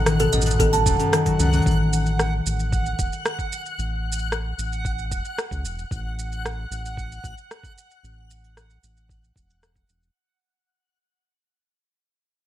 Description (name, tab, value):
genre	folktronica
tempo	113 BPM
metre	4/4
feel	straight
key	unclear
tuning	A4 = 440 Hz
part	concert harp	arpeggios	0.0-1.7 s	F#2 to F#3	-24 LUFS	left 3 dB	digital delay
part	round analog bass	bass	0.0-10.1 s	D#1 to C#2	-25 LUFS	equal	none
part	backwards swelling texture	texture	0.0-10.2 s	F#5 to F#6	-32 LUFS	right 1 dB	built-in reverb, plate reverb
part	organic electronic drum kit	drums	0.1-10.1 s	hi-hat, rim click, shaker	-28 LUFS	right 1 dB	studio reverb
part	kalimba	second line	0.2-0.9 s	A4 to A5	-24 LUFS	right 2 dB	digital delay, plate reverb
part	electronic kick drum	drums	0.6-9.9 s	none	-26 LUFS	equal	studio reverb
room	light reverb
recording	none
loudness	-21 LUFS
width	side -12 dB against mid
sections	0.0-1.7 A section; 1.7-10.2 B section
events	fade-out 1.7-10.2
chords	0.0 B/A; 1.7 N.C.; 5.9 F#m/A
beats	0.07 0.60 1.13 | 1.66 2.19 2.72 3.25 | 3.78 4.31 4.84 5.38 | 5.91 6.44 6.97 7.50 | 8.03 8.56 9.09 9.62